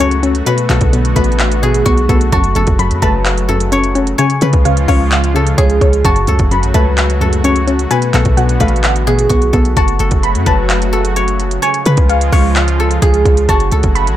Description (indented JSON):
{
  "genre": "hip hop, trap",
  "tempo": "129 BPM",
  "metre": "4/4",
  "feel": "half-time",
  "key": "F# harmonic minor",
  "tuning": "A4 = 440 Hz",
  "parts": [
    { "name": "guzheng", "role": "melody", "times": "0.0-14.2 s", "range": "F#4 to C#5", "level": "-17 LUFS", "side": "left 1 dB", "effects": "tape echo" },
    { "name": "hollow square pluck", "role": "accompaniment", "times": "0.0-9.8 s", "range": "F#2 to C#5", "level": "-17 LUFS", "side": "left 2 dB", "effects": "chorus, tape echo" },
    { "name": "warm analog pad", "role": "sustained chords", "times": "0.0-14.2 s", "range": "C#3 to F#4", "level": "-20 LUFS", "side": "right 1 dB", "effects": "chorus" },
    { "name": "warm 808-style bass", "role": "bass", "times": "0.0-14.2 s", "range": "F#1 to C#3", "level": "-15 LUFS", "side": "equal", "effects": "none" },
    { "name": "trap drum kit", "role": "drums", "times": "0.0-14.2 s", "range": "handclaps, hi-hat, kick drum", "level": "-16 LUFS", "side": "equal", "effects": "vintage 12-bit sampler grit" },
    { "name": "warbly dusty pluck", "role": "second line", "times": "2.3-14.2 s", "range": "E#5 to B5", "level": "-21 LUFS", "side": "equal", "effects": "chorus, tape echo" }
  ],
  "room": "little or no reverb",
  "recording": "echo-heavy mix",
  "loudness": "-10 LUFS",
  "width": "side -12 dB against mid",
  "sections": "0.0-9.8 A section; 9.8-14.2 A section",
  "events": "none",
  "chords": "0.5 Bm7; 2.3 F#m; 4.2 C#; 6.0 F#m; 7.9 Bm7; 9.8 F#m; 11.6 C#; 13.5 F#m"
}